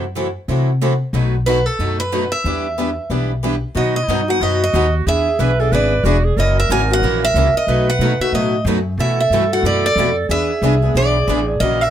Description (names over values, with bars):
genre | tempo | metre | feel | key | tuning
acoustic string swing (jazz manouche) | 184 BPM | 4/4 | swing 61% on 8ths | unclear | A4 = 442 Hz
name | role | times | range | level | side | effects
picked steel-string acoustic guitar | melody | 0.0-11.9 s | A4 to G#5 | -19 LUFS | right 1 dB | none
picked steel-string acoustic guitar | accompaniment | 0.0-11.8 s | B2 to G#4 | -22 LUFS | left 5 dB | none
picked steel-string acoustic guitar | accompaniment | 0.0-11.8 s | B2 to B4 | -25 LUFS | right 8 dB | none
upright bass | bass | 0.0-11.9 s | E1 to C3 | -19 LUFS | left 1 dB | none
clear clarinet | second line | 3.8-11.9 s | D#4 to B4 | -23 LUFS | right 6 dB | none
room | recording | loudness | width
light reverb | close, detailed microphones | -14 LUFS | side -10 dB against mid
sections
0.0-3.8 A section; 3.8-11.9 B section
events
none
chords
0.0 F#m7b5; 1.1 B7; 2.4 Em7; 3.8 B; 5.1 E7; 6.4 F#7; 7.7 B7; 9.0 B7sus4; 10.3 E7